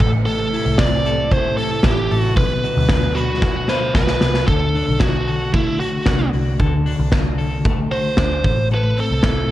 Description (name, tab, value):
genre	jangly indie pop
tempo	114 BPM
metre	4/4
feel	straight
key	unclear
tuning	A4 = 440 Hz
part	biting lead guitar	melody	0.0-9.5 s	E4 to D5	-22 LUFS	right 1 dB	overdrive, tape echo, plate reverb
part	string machine, violas	sustained chords	0.0-4.5 s	C3 to B3	-29 LUFS	right 1 dB	ensemble chorus
part	clean electric guitar	arpeggios	0.0-9.5 s	A2 to B4	-23 LUFS	left 2 dB	harmonic tremolo
part	vintage muted picked electric bass	bass	0.0-9.5 s	A1 to D2	-22 LUFS	equal	none
part	big rock drum kit	drums	0.0-9.4 s	crash cymbal, hi-hat, kick drum, snare drum	-20 LUFS	equal	gated reverb
room	light reverb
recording	cassette tape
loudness	-15 LUFS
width	side -14 dB against mid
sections	0.0-4.5 A section; 4.5-9.5 B section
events	drum fill 3.4-4.5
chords	0.0 Am; 2.4 Bm; 4.5 D; 8.4 Am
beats	| 0.27 0.79 1.32 1.85 | 2.37 2.90 3.43 3.96 | 4.48 5.01 5.54 6.07 | 6.60 7.12 7.65 8.18 | 8.71 9.24